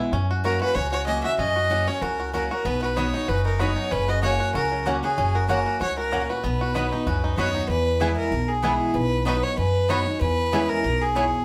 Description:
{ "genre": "bluegrass", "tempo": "190 BPM", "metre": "4/4", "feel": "swing 54% on 8ths", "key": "B major", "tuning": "A4 = 440 Hz", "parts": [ { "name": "picked steel-string acoustic guitar", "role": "accompaniment", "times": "0.0-11.4 s", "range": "E2 to F#4", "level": "-30 LUFS", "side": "equal", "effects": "none" }, { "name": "bluegrass banjo", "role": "arpeggios", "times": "0.0-11.2 s", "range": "F#3 to G#4", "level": "-32 LUFS", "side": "equal", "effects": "none" }, { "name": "upright bass", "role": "bass", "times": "0.1-11.3 s", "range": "F#1 to F#2", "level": "-29 LUFS", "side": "equal", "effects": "none" }, { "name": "clear fiddle", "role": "melody", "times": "0.4-11.4 s", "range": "G#4 to E5", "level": "-28 LUFS", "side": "equal", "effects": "none" }, { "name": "mandolin", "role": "stabs", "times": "3.0-11.3 s", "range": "A#3 to B5", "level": "-31 LUFS", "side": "equal", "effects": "none" } ], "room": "wet studio reverb, RT60 0.5 s", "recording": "heard from further back in the room", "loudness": "-23 LUFS", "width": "mono", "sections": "0.0-7.7 A section; 7.7-11.4 B section", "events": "none", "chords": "0.1 F#; 2.7 B; 3.9 F#; 6.4 B; 7.7 E; 9.0 B; 10.2 E6", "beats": "| 0.12 0.44 0.76 1.07 | 1.39 1.70 2.02 2.34 | 2.65 2.97 3.28 3.60 | 3.91 4.23 4.54 4.86 | 5.18 5.49 5.81 6.12 | 6.43 6.75 7.07 7.38 | 7.69 8.01 8.32 8.64 | 8.95 9.27 9.58 9.90 | 10.21 10.53 10.84 11.16" }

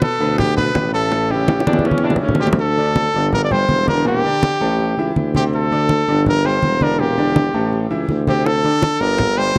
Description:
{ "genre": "latin, salsa", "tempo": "164 BPM", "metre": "4/4", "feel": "straight", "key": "unclear", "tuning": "A4 = 444 Hz", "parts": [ { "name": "brilliant trumpet", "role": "melody", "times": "0.0-9.6 s", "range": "G4 to D5", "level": "-22 LUFS", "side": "equal", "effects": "tape echo" }, { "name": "bright baby grand piano", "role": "accompaniment", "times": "0.0-9.6 s", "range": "A2 to G5", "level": "-25 LUFS", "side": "equal", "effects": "none" }, { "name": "bongos", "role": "percussion", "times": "0.0-2.6, 8.5-9.6 s", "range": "none", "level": "-24 LUFS", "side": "equal", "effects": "none" }, { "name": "congas", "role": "percussion", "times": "0.0-9.6 s", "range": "none", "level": "-23 LUFS", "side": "equal", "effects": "none" }, { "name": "warm tuba", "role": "bass", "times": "0.2-9.6 s", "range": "E1 to E2", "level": "-22 LUFS", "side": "equal", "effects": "none" }, { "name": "clear saxophone section", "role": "second line", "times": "1.7-2.6 s", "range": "C#4 to D4", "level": "-29 LUFS", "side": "equal", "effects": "tape echo" } ], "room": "moderate studio reverb, RT60 0.5 s", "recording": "dark, warm production", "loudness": "-17 LUFS", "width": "mono", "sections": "0.0-2.6 A section; 2.6-9.6 B section", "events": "drum fill 1.5-2.6", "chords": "0.0 G (rootless); 1.1 A7; 2.6 D5; 3.3 G5; 4.1 Em7b5; 4.8 A7; 5.5 D5; 6.3 G5; 7.0 Em7b5; 7.7 A; 8.5 D5", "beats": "0.02 0.39 0.75 | 1.12 1.49 1.85 2.22 | 2.59 2.96 3.32 3.69 | 4.05 4.42 4.79 5.16 | 5.52 5.89 6.26 6.62 | 6.99 7.36 7.72 8.09 | 8.46 8.82 9.19 9.56" }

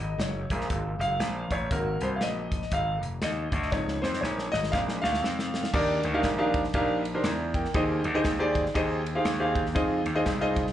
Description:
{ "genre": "uptempo gospel", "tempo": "119 BPM", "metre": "4/4", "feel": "swing 60% on 8ths", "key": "Eb major from 5.7 s", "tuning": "A4 = 441 Hz", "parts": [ { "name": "warm concert grand piano", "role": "accompaniment", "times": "0.0-10.6 s", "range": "Eb3 to Bb5", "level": "-28 LUFS", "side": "equal", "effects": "plate reverb, slapback echo" }, { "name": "gritty slap bass", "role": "bass", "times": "0.0-10.7 s", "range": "F1 to F2", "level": "-30 LUFS", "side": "equal", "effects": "overdrive" }, { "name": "natural country drum kit", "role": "drums", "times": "0.2-10.7 s", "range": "crash cymbal, hi-hat, kick drum, ride cymbal, snare drum", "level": "-32 LUFS", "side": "equal", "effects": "none" } ], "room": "moderate club reverb, RT60 0.6 s", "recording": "live gig heard through the venue's PA, club reverb, nothing above 10.7 kHz", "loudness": "-25 LUFS", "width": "side -11 dB against mid", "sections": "0.0-5.7 A section; 5.7-10.7 B section", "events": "grand piano solo 0.0-5.7; drum fill 3.7-5.7", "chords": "0.0 Gbmaj7; 1.7 Ab7; 3.7 Dbmaj7; 4.7 Bb7; 5.7 Ebmaj7; 7.7 Abmaj7; 9.8 Fm7", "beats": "0.20 0.70 1.21 | 1.71 2.21 2.72 3.22 | 3.73 4.23 4.73 5.23 | 5.74 6.24 6.74 7.25 | 7.75 8.25 8.75 9.26 | 9.76 10.26" }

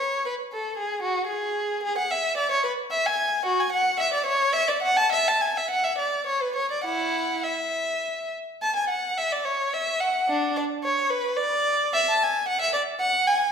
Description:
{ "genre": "classical, baroque-style suite movement for unaccompanied violin", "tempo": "98-117 BPM", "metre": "3/4", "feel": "rubato", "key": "unclear", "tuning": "A4 = 440 Hz", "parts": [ { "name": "warm violin", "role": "solo", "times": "0.0-13.5 s", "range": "D4 to A5", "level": "-22 LUFS", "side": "equal", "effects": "none" } ], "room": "wet recital hall reverb, RT60 1.4 s", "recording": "recorded in a church or concert hall", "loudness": "-22 LUFS", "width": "side -7 dB against mid", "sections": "0.0-8.6 A section; 8.6-13.5 B section", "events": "none", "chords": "none", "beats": "| 0.25 0.77 1.29 | 1.84 2.39 2.94 | 3.47 4.00 4.53 | 5.11 5.69 6.25 | 6.84 7.43 8.02 | 8.62 9.17 9.73 | 10.28 10.82 11.36 | 11.93 12.48 13.00" }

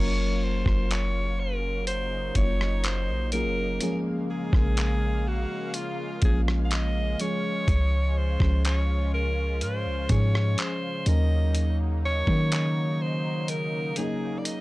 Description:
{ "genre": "contemporary R&B", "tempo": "62 BPM", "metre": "4/4", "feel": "straight", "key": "Bb minor", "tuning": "A4 = 441 Hz", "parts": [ { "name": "clear alto saxophone", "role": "melody", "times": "0.0-14.6 s", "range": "F4 to F5", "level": "-31 LUFS", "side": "equal", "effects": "none" }, { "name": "mellow FM electric piano", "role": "accompaniment", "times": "0.0-14.6 s", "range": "Db3 to Db5", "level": "-31 LUFS", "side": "left 1 dB", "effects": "chorus" }, { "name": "lush unison pad", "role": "sustained chords", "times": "0.0-14.6 s", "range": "Db3 to F5", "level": "-37 LUFS", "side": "equal", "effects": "chorus" }, { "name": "warm 808-style bass", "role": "bass", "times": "0.0-13.9 s", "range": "Gb1 to Eb3", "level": "-25 LUFS", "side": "equal", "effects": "none" }, { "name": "dusty soul sampler-style drum kit", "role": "drums", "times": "0.7-14.6 s", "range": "handclaps, hi-hat, kick drum, rim click", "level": "-28 LUFS", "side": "equal", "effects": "none" } ], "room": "little or no reverb", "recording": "dry, gritty hardware recording", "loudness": "-23 LUFS", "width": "side -19 dB against mid", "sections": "0.0-14.6 A section", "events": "drum fill 13.5-14.6", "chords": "0.0 Gbmaj7; 3.8 Bbm7; 7.2 Db; 11.1 Ebm7", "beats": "0.90 1.87 2.84 | 3.81 4.77 5.74 6.71 | 7.68 8.64 9.61 10.58 | 11.55 12.52 13.48 14.45" }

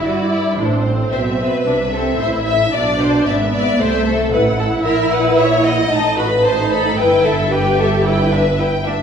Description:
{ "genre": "quick classical-period movement for string orchestra", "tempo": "112 BPM", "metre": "4/4", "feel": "rubato", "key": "E minor", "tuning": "A4 = 439 Hz", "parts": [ { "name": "warm symphonic violin section", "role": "melody", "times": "0.0-9.0 s", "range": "C5 to B5", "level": "-22 LUFS", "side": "left 3 dB", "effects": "none" }, { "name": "rich symphonic violin section", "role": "second line", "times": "0.0-8.9 s", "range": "E4 to E5", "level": "-18 LUFS", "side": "left 2 dB", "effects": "none" }, { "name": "warm symphonic viola section", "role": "accompaniment", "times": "0.0-8.9 s", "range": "A3 to G4", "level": "-19 LUFS", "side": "right 2 dB", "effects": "none" }, { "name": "bright symphonic double bass section", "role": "bass", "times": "0.0-9.0 s", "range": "G1 to G2", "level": "-22 LUFS", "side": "right 2 dB", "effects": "none" }, { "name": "warm symphonic cello section", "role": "bass", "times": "0.0-9.0 s", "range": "G2 to G3", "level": "-24 LUFS", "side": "right 2 dB", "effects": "none" } ], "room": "wet recital hall reverb, RT60 1.3 s", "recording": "recorded in a church or concert hall", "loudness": "-13 LUFS", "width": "side -7 dB against mid", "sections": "0.0-9.0 A section", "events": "none", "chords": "0.0 Em/G; 0.6 Am; 2.7 E7/B; 3.8 Am/C; 4.8 F#7/A#; 5.9 B7/A; 7.0 Em/G", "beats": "0.04 | 0.58 1.11 1.65 2.19 | 2.73 3.26 3.79 4.32 | 4.85 5.38 5.91 6.45 | 6.98 7.52 8.05 8.59" }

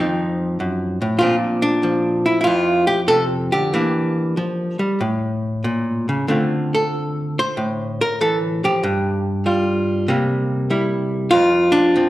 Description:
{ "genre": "solo jazz", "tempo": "95 BPM", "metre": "4/4", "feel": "swing 68% on 8ths, rubato", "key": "F major", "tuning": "A4 = 441 Hz", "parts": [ { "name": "archtop guitar, miked and amplified", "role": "solo", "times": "0.0-12.1 s", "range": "F2 to C5", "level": "-17 LUFS", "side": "equal", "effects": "none" } ], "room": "wet large studio reverb, RT60 1.3 s", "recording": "none", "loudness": "-17 LUFS", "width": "side -15 dB against mid", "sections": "0.0-12.1 A section", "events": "none", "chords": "0.0 F7b9; 1.2 Bbadd9; 3.7 Em7b5; 5.0 A7; 6.3 Dm9; 8.8 Fsus2/G; 10.1 C7; 11.3 F5", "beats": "0.59 | 1.21 1.84 2.47 3.10 | 3.73 4.37 5.01 5.65 | 6.29 6.93 7.57 8.20 | 8.83 9.46 10.08 10.70 | 11.32 11.96" }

